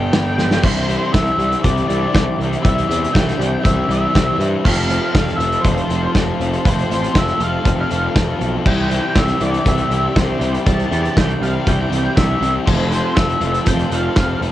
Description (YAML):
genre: indie rock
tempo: 120 BPM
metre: 4/4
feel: straight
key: C major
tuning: A4 = 437 Hz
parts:
  - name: octave-fuzz lead guitar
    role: melody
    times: 0.0-14.4 s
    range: C5 to A5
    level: -23 LUFS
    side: left 1 dB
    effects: distortion, cassette tape, tape echo
  - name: analog string pad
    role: sustained chords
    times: 0.0-14.5 s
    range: F4 to C6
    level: -32 LUFS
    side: equal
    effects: none
  - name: biting overdriven guitar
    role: riff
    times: 0.0-14.5 s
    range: F3 to A4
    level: -23 LUFS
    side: left 7 dB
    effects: cassette tape
  - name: twelve-string electric guitar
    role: riff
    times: 0.0-14.5 s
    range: C3 to G4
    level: -25 LUFS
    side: right 8 dB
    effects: lush chorus, cassette tape
  - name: fuzz picked electric bass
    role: bass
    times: 0.0-14.5 s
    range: F1 to G2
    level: -20 LUFS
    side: equal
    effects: overdrive
  - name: loose indie drum kit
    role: drums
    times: 0.1-14.5 s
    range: crash cymbal, hi-hat, kick drum, snare drum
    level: -18 LUFS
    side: equal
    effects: cassette tape
  - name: soft synth bell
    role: second line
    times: 0.6-14.4 s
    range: C6 to A6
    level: -37 LUFS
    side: right 7 dB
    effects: none
room: little or no reverb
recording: home recording on cassette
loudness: -14 LUFS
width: side -13 dB against mid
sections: 0.6-14.5 A section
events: drum fill 0.4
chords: 0.0 G; 0.6 Cadd9; 4.6 Fmaj7; 8.7 Cadd9; 12.7 Fmaj7